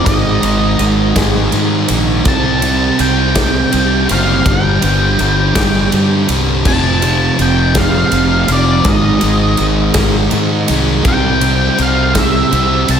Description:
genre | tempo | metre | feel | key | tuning
quiet-loud alternative rock | 55 BPM (dotted quarters) | 6/8 | straight | unclear | A4 = 439 Hz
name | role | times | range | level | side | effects
octave-fuzz lead guitar | melody | 0.0-13.0 s | D5 to A5 | -18 LUFS | equal | distortion, slapback echo
sludgy distorted guitar | riff | 0.0-13.0 s | F2 to C4 | -17 LUFS | left 8 dB | overdrive, slapback echo
thick fuzz guitar | riff | 0.0-13.0 s | F2 to C4 | -17 LUFS | right 9 dB | distortion, slapback echo
fuzz fingered electric bass | bass | 0.1-13.0 s | F1 to Ab2 | -16 LUFS | equal | overdrive
big rock drum kit | drums | 0.1-13.0 s | crash cymbal, kick drum, ride cymbal, snare drum | -17 LUFS | equal | none
room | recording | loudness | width
moderate lush hall reverb, RT60 2.9 s | big arena sound | -10 LUFS | side -8 dB against mid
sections
0.0-13.0 A section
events
none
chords
0.1 Ab5; 2.3 C5; 4.5 G5; 6.7 F; 8.9 Ab; 11.1 C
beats
| 0.06 1.16 | 2.26 3.36 | 4.46 5.56 | 6.66 7.76 | 8.86 9.95 | 11.05 12.15

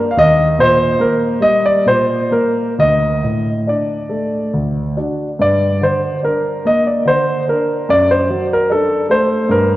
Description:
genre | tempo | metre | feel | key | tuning
classical, baroque-style suite movement for grand piano | 70 BPM | 3/4 | uneven beats, rubato | unclear | A4 = 442 Hz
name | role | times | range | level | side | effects
warm concert grand piano | solo | 0.0-9.8 s | D2 to F5 | -13 LUFS | equal | none
room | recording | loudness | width
wet church reverb, RT60 2.7 s | worn, warbling old tape, cassette tape, warbly pitch drift, nothing above 7.4 kHz | -13 LUFS | side -16 dB against mid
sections
0.0-9.8 A section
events
none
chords
0.2 Eb; 2.8 D5; 4.5 D; 5.4 Gm; 7.9 D/F#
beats
| 0.17 0.99 1.85 | 2.78 3.67 4.54 | 5.39 6.23 7.06 | 7.89 8.70 9.50

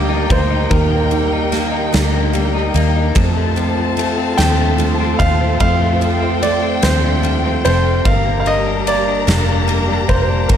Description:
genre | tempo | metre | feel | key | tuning
six-eight pop ballad | 49 BPM (dotted quarters) | 6/8 | straight | unclear | A4 = 436 Hz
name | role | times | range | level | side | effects
clear baby grand piano | melody | 0.0-10.6 s | Bb4 to G5 | -20 LUFS | right 2 dB | dub echo
direct-recorded clean electric guitar | accompaniment | 0.0-10.6 s | F2 to Eb4 | -22 LUFS | left 10 dB | dub echo
warm studio string section | sustained chords | 0.0-10.6 s | Eb4 to Bb5 | -22 LUFS | equal | none
picked steel-string acoustic guitar | arpeggios | 0.0-10.6 s | Eb3 to Eb4 | -24 LUFS | right 12 dB | none
vintage muted fingered electric bass | bass | 0.0-10.6 s | F1 to F2 | -18 LUFS | equal | none
huge arena drum kit | drums | 0.3-10.6 s | kick drum, ride cymbal, snare drum | -20 LUFS | equal | dub echo
room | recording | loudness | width
small room ambience | echo-heavy mix | -13 LUFS | side -9 dB against mid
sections
0.0-10.6 A section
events
none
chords
0.0 Eb; 3.2 F; 8.1 Gm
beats
| 0.71 1.94 | 3.16 4.38 | 5.61 6.83 | 8.06 9.28 | 10.51

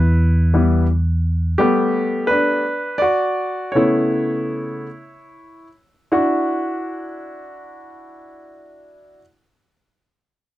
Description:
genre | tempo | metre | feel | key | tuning
pop | 47-57 BPM (dotted quarters) | 6/8 | straight | D major | A4 = 439 Hz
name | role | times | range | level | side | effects
bright concert grand piano | accompaniment | 0.0-9.2 s | C#3 to D5 | -18 LUFS | equal | none
fingered electric bass | bass | 0.0-1.6 s | E2 | -15 LUFS | equal | none
room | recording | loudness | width
light reverb | none | -16 LUFS | side -15 dB against mid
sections
0.0-6.1 A section; 6.1-10.6 B section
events
grand piano solo 0.0-6.1; slowing down 1.6-6.1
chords
0.0 Em; 1.6 Gadd9; 3.7 Aadd9; 6.1 Dadd9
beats
0.54 | 1.59 2.65 | 3.75 4.89 | 6.12 7.39 | 8.66

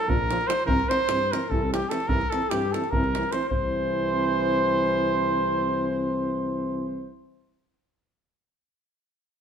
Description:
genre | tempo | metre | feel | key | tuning
balkan folk, Balkan brass band | 295 BPM (eighths) | 7/8 | straight | C mixolydian | A4 = 442 Hz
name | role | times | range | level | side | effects
mellow cornet | melody | 0.0-7.1 s | G4 to C5 | -26 LUFS | right 2 dB | none
mellow flugelhorn | second line | 0.0-7.1 s | G4 to C5 | -30 LUFS | left 5 dB | none
mellow euphonium | accompaniment | 0.1-7.1 s | C4 to D4 | -33 LUFS | equal | none
warm trombone | accompaniment | 0.1-7.1 s | E3 to F3 | -33 LUFS | right 3 dB | none
mellow tuba | bass | 0.1-7.1 s | Bb1 to G2 | -31 LUFS | equal | none
davul | percussion | 0.1-3.7 s | none | -28 LUFS | equal | none
room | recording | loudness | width
wet stone room reverb, RT60 1.1 s | band playing live in one room | -22 LUFS | side -7 dB against mid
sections
0.0-3.5 A section; 3.5-6.4 B section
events
none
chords
0.0 Bb; 0.7 C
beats
0.05 0.26 0.46 | 0.66 0.87 1.07 1.27 1.48 1.68 1.88 | 2.09 2.29 2.49 2.70 2.90 3.10 3.31 | 3.51 3.71 3.92 4.12 4.32 4.52 4.73 | 4.93 5.13 5.34 5.54 5.74 5.95 6.15

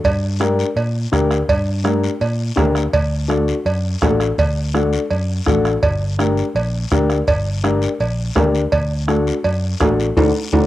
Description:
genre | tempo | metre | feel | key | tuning
latin, cumbia | 166 BPM | 4/4 | straight | G harmonic minor | A4 = 440 Hz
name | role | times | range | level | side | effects
fingered electric bass | bass | 0.0-10.7 s | G1 to Bb2 | -20 LUFS | equal | none
bombo | percussion | 0.0-10.6 s | none | -22 LUFS | right 1 dB | none
congas | percussion | 0.0-10.6 s | none | -26 LUFS | right 7 dB | none
cowbell and timbales | percussion | 0.0-10.6 s | none | -21 LUFS | right 3 dB | none
guiro | percussion | 0.0-10.6 s | none | -34 LUFS | left 6 dB | none
dark upright piano | accompaniment | 0.4-10.6 s | D4 to Bb4 | -19 LUFS | left 4 dB | cassette tape
room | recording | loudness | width
light reverb, small room ambience | home recording on cassette | -15 LUFS | side -15 dB against mid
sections
0.0-10.7 A section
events
drum fill 10.2-10.7; band accent 10.2-10.7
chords
0.0 Gm; 2.9 D; 5.8 Gm; 8.7 D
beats
| 0.05 0.41 0.77 1.13 | 1.49 1.85 2.22 2.58 | 2.94 3.30 3.66 4.02 | 4.38 4.75 5.11 5.47 | 5.83 6.19 6.55 6.92 | 7.28 7.64 8.00 8.36 | 8.72 9.09 9.45 9.81 | 10.17 10.53

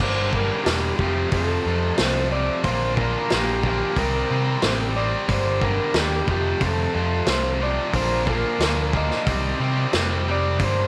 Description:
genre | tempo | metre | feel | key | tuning
classic rock | 90 BPM | 4/4 | straight | unclear | A4 = 440 Hz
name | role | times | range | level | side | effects
clean lap steel guitar | melody | 0.0-10.9 s | G4 to Eb5 | -29 LUFS | equal | tape echo
crunchy overdriven guitar | riff | 0.0-10.9 s | F2 to C4 | -30 LUFS | equal | spring reverb
overdriven electric guitar | riff | 0.0-10.9 s | F2 to G4 | -30 LUFS | equal | spring reverb
overdriven picked electric bass | bass | 0.0-10.9 s | E1 to C3 | -28 LUFS | equal | none
vintage drum kit | drums | 0.0-10.8 s | crash cymbal, hi-hat, kick drum, snare drum | -28 LUFS | equal | none
room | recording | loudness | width
moderate echo chamber reverb, RT60 1.9 s, studio reverb | none | -22 LUFS | mono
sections
0.0-10.9 A section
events
none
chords
0.0 Gm; 1.0 F; 2.7 Bb; 4.0 Cm; 5.3 Gm; 6.3 F; 8.0 Bb; 9.3 Cm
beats
| 0.00 0.66 1.33 1.99 | 2.65 3.31 3.98 4.64 | 5.30 5.97 6.63 7.29 | 7.96 8.62 9.28 9.95 | 10.61

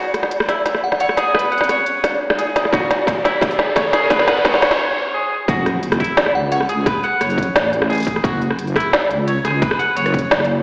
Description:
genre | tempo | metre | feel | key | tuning
half-time drum and bass | 174 BPM | 4/4 | half-time | F# minor | A4 = 440 Hz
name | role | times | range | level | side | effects
twangy electric guitar | arpeggios | 0.0-10.6 s | E4 to F#5 | -23 LUFS | equal | lush chorus, low-pass filter, digital delay
riser and impact | sound effects | 1.5-6.9 s | none | -28 LUFS | equal | none
organic electronic drum kit | drums | 0.1-10.5 s | hi-hat, rim click, snare drum | -20 LUFS | equal | overdrive
glassy synth bell | melody | 0.8-1.3, 6.3-6.8 s | F#5 | -29 LUFS | equal | chorus, dub echo
electronic kick drum | drums | 2.7-10.2 s | none | -24 LUFS | equal | overdrive
deep soft wobble bass | bass | 5.5-10.6 s | F#1 to C#2 | -24 LUFS | equal | chorus
room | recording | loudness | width
wet lush hall reverb, RT60 2.2 s | played on a big sound system in a bare room, large studio reverb, high-pass filter, AM radio sound | -18 LUFS | mono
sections
0.0-5.5 A section; 5.5-10.6 B section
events
build-up 0.0-5.5; drum fill 0.0-4.8; riser 1.5-4.8; break 4.8-5.5; drop 5.5-10.6; impact 5.5-6.9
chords
0.0 F#5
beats
0.31 0.66 1.00 | 1.35 1.69 2.04 2.38 | 2.73 3.07 3.42 3.76 | 4.11 4.45 4.80 5.14 | 5.49 5.83 6.18 6.52 | 6.87 7.21 7.56 7.90 | 8.24 8.59 8.94 9.28 | 9.62 9.97 10.31

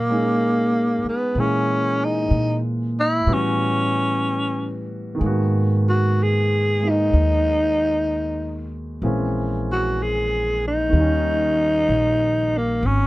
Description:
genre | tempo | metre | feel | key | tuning
jazz ballad | 63 BPM | 4/4 | swing 67% on 8ths | G# minor | A4 = 440 Hz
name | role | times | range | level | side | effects
growling tenor saxophone | melody | 0.0-13.1 s | A#3 to G#4 | -20 LUFS | equal | none
warm baby grand piano | accompaniment | 0.0-12.9 s | D#3 to A#4 | -26 LUFS | equal | none
upright bass | bass | 0.0-13.1 s | G#1 to A#2 | -23 LUFS | equal | none
room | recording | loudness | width
little or no reverb | close, detailed microphones | -18 LUFS | side -18 dB against mid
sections
0.0-13.1 A section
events
none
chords
0.0 D#m7; 1.4 A#m7b5; 3.3 A13; 5.2 G#m9; 9.0 A#m7b5; 10.9 D#7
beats
0.41 | 1.36 2.31 3.27 4.22 | 5.19 6.16 7.11 8.07 | 9.02 9.98 10.93 11.88 | 12.83

